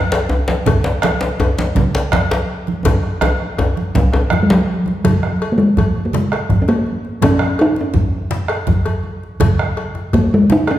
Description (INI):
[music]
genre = west african traditional, West African drum ensemble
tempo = 110 BPM (dotted quarters)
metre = 12/8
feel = straight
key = F# major pentatonic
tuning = A4 = 436 Hz
[part]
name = cowbell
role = percussion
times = 0.1-10.8 s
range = none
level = -25 LUFS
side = left 2 dB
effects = none
[part]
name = djembe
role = percussion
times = 0.1-4.7 s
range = none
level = -18 LUFS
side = left 1 dB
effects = none
[part]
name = congas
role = percussion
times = 0.5-10.7 s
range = none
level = -23 LUFS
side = right 4 dB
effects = none
[part]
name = djembe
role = percussion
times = 0.5-10.7 s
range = none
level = -22 LUFS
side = left 2 dB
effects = none
[part]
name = bombo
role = percussion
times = 0.7-10.8 s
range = none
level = -20 LUFS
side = right 2 dB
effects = none
[part]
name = talking drum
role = melody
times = 4.4-10.8 s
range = F#3 to D#4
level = -15 LUFS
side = equal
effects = none
[sound]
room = wet recital hall reverb, RT60 1.8 s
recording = heard from further back in the room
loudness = -14 LUFS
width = side -13 dB against mid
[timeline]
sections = 0.0-5.0 A section; 5.0-10.8 B section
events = drum fill 2.9-5.0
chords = none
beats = 0.11 | 0.66 1.21 1.76 2.31 | 2.85 3.40 3.95 4.49 | 5.04 5.59 6.13 6.68 | 7.23 7.77 8.32 8.86 | 9.41 9.96 10.50